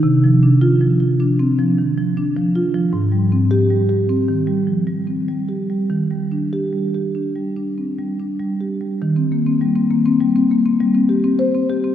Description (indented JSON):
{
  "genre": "classical, contemporary piece for solo marimba",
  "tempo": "95-106 BPM",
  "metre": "5/4",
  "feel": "rubato",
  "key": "Eb major",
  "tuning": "A4 = 440 Hz",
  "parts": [
    { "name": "marimba with soft mallets", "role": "solo", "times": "0.0-11.9 s", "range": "Ab2 to C5", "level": "-15 LUFS", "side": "equal", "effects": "none" }
  ],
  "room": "wet church reverb, RT60 2.7 s",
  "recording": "recorded in a church or concert hall",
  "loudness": "-15 LUFS",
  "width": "side -10 dB against mid",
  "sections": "0.0-9.0 A section; 9.0-11.9 B section",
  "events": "none",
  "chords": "0.0 Dm7/C; 2.9 Abmaj7; 5.9 Ebmaj7; 9.0 Eb6",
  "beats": "| 0.04 0.62 1.20 1.79 2.36 | 2.93 3.51 4.09 4.68 5.28 | 5.90 6.53 7.15 7.78 8.40 | 9.02 9.62 10.22 10.81 11.40"
}